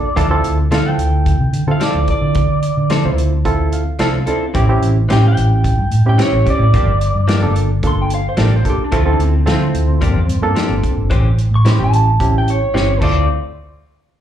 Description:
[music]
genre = straight-eighth soul blues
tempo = 110 BPM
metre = 4/4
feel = straight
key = D minor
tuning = A4 = 439 Hz
[part]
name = electric guitar through a small old amp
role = melody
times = 0.0-13.3 s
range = C4 to C#6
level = -21 LUFS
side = equal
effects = spring reverb, slapback echo
[part]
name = barky reed electric piano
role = accompaniment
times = 0.0-13.3 s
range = Bb3 to F5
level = -21 LUFS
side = right 4 dB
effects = slapback echo
[part]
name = direct-recorded clean electric guitar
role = stabs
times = 0.2-13.2 s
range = E3 to A4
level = -23 LUFS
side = left 6 dB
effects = spring reverb, slapback echo
[part]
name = vintage muted fingered electric bass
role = bass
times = 0.2-13.3 s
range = G1 to D3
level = -15 LUFS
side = equal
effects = none
[part]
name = warm soul drum kit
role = drums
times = 0.2-13.1 s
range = crash cymbal, hi-hat, kick drum, snare drum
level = -20 LUFS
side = equal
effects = none
[sound]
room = light reverb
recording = live gig heard through the venue's PA, club reverb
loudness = -12 LUFS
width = side -10 dB against mid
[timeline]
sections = 0.0-13.3 A section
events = reed electric piano fill 3.5-4.6; drum fill 12.7-13.3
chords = 0.2 Dm7; 4.6 A7#9; 6.7 Gm7; 8.9 Dm7; 10.0 Gm7; 11.1 A7#9; 13.0 Dm7; 13.3 N.C.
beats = | 0.17 0.72 1.26 1.81 | 2.36 2.91 3.46 4.00 | 4.55 5.10 5.65 6.19 | 6.74 7.29 7.83 8.38 | 8.93 9.47 10.02 10.56 | 11.11 11.65 12.20 12.74

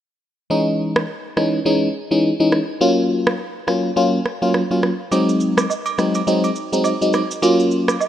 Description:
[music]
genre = afrobeats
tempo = 104 BPM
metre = 4/4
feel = swing 58% on 16ths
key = unclear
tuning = A4 = 440 Hz
[part]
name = FM electric piano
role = accompaniment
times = 0.5-8.0 s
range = Fb3 to F4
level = -17 LUFS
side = equal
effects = chorus, phaser
[part]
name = electronic rim click and shaker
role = drums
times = 1.0-8.1 s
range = none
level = -23 LUFS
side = right 2 dB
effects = none
[part]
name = agogo bells and woodblock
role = percussion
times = 5.1-8.1 s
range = none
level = -25 LUFS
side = right 7 dB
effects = none
[sound]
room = moderate lush hall reverb, RT60 2.6 s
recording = rough home demo mix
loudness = -16 LUFS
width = side -10 dB against mid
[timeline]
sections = 0.5-8.1 A section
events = none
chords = 0.5 Dbmadd9; 2.8 Gbmaj7; 5.1 Ab7; 7.4 Gbmaj7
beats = | 0.50 1.08 1.66 2.23 | 2.81 3.39 3.97 4.54 | 5.12 5.70 6.27 6.85 | 7.43 8.00

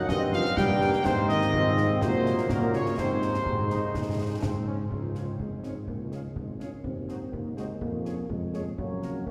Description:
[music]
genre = military-style march for wind band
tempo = 124 BPM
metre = 2/4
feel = straight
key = Db major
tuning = A4 = 440 Hz
[part]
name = mellow trumpet section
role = melody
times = 0.0-9.3 s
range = Bb4 to G5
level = -34 LUFS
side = equal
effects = none
[part]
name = mellow euphonium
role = second line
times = 0.0-9.3 s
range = Bb2 to Db4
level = -35 LUFS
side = equal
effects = none
[part]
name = warm woodwind section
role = second line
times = 0.0-9.1 s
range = Gb4 to G5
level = -37 LUFS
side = equal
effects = none
[part]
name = warm trombone section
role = sustained chords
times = 0.0-4.8 s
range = Bb3 to Eb4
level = -39 LUFS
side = equal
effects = none
[part]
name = warm tuba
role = bass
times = 0.1-9.3 s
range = Ab1 to Bb2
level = -33 LUFS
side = equal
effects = none
[part]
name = concert snare drum, concert bass drum and clash cymbals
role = drums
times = 0.1-9.3 s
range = none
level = -36 LUFS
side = equal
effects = none
[part]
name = mellow French horn section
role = accompaniment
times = 0.3-9.3 s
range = F3 to Ab4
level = -38 LUFS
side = equal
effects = none
[sound]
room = wet cathedral reverb, RT60 5.1 s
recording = recorded in a church or concert hall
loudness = -28 LUFS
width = mono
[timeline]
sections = 0.0-4.9 A section; 4.9-9.3 B section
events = none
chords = 0.1 Eb7/G; 1.1 Ab; 2.0 Gb/Bb; 3.0 Ab; 4.9 Db; 6.8 Cdim/Eb; 7.8 Db/F; 8.8 Gb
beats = | 0.09 0.57 | 1.06 1.54 | 2.02 2.50 | 2.98 3.46 | 3.95 4.43 | 4.91 5.39 | 5.88 6.36 | 6.85 7.33 | 7.81 8.30 | 8.78 9.27

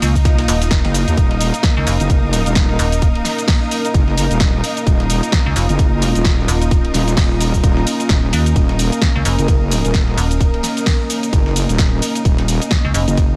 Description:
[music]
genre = bass house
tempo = 130 BPM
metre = 4/4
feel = swing 58% on 16ths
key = Eb minor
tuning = A4 = 439 Hz
[part]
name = dark analog pad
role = sustained chords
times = 0.0-13.4 s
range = Bb3 to Eb5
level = -25 LUFS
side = equal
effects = chorus, sidechain pumping
[part]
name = metallic FM bass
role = bass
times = 0.0-13.1 s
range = Eb1 to Eb2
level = -19 LUFS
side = equal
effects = overdrive, sidechain pumping
[part]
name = dusty soul sampler-style drum kit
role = drums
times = 0.0-13.3 s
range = hi-hat, ride cymbal, snare drum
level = -36 LUFS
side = equal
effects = none
[part]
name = house drum kit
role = drums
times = 0.0-13.3 s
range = cabasa, hi-hat, ride cymbal, snare drum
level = -24 LUFS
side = equal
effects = studio reverb
[part]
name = rich studio string section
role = texture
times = 0.0-13.4 s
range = Eb4 to Eb6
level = -27 LUFS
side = equal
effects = sidechain pumping
[part]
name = electronic kick drum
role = drums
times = 0.2-13.3 s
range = none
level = -17 LUFS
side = equal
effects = studio reverb
[part]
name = swell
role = sound effects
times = 0.5-1.2 s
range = none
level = -37 LUFS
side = equal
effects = none
[part]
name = wobble bass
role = bass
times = 0.8-13.4 s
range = Eb1 to Eb2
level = -20 LUFS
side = equal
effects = chorus, tube saturation, sidechain pumping
[sound]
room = light reverb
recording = none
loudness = -16 LUFS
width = mono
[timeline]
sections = 0.0-13.4 A section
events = none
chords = 0.0 Eb5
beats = 0.25 0.71 | 1.18 1.64 2.10 2.56 | 3.02 3.48 3.94 4.41 | 4.87 5.33 5.79 6.25 | 6.71 7.17 7.64 8.10 | 8.56 9.02 9.48 9.94 | 10.40 10.87 11.33 11.79 | 12.25 12.71 13.18

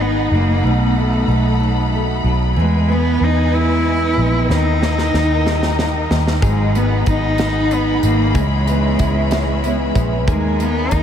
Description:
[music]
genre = six-eight pop ballad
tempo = 62 BPM (dotted quarters)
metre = 6/8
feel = straight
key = G# minor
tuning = A4 = 439 Hz
[part]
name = rich cello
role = melody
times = 0.0-11.0 s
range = G#3 to E4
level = -20 LUFS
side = equal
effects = diffuse ambient delay
[part]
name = fingerpicked steel-string acoustic guitar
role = accompaniment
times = 0.0-11.0 s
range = G#2 to E4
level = -22 LUFS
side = equal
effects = double-tracked left and right
[part]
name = warm studio string section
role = sustained chords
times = 0.0-11.0 s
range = E3 to B5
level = -24 LUFS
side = left 1 dB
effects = none
[part]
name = vintage muted fingered electric bass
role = bass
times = 0.0-11.0 s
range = F#1 to E2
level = -18 LUFS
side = equal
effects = none
[part]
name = modern studio drum kit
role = drums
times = 4.5-11.0 s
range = hi-hat, kick drum, snare drum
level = -23 LUFS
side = equal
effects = none
[part]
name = direct-recorded clean electric guitar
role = arpeggios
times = 6.4-11.0 s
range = E3 to G#4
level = -27 LUFS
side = left 5 dB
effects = none
[sound]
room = moderate huge ambient reverb, RT60 9.1 s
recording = dreamy mix soaked in reverb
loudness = -14 LUFS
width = side -9 dB against mid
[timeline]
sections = 0.0-11.0 A section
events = drum fill 4.5-6.4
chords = 0.0 G#m7; 0.6 B7; 2.6 E; 4.5 D#; 6.4 G#m7; 8.4 C#m7; 10.3 D#sus4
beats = | 0.64 1.60 | 2.57 3.53 | 4.50 5.46 | 6.42 7.39 | 8.35 9.31 | 10.28

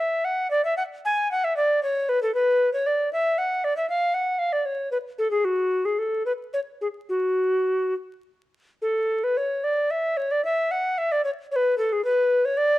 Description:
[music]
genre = classical, baroque-style fantasia for unaccompanied recorder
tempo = 68-80 BPM (dotted quarters)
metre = 6/8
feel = rubato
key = F# minor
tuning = A4 = 440 Hz
[part]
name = tenor recorder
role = solo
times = 0.0-12.8 s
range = F#4 to G#5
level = -21 LUFS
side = equal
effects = none
[sound]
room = moderate stone room reverb, RT60 1.1 s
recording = vinyl crackle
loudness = -22 LUFS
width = side -16 dB against mid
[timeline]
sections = 0.0-8.8 A section; 8.8-12.8 A section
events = none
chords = none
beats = | 0.78 1.57 | 2.35 3.12 | 3.89 4.65 | 5.44 6.25 | 7.09 7.96 | 8.83 9.64 | 10.45 11.25 | 12.05

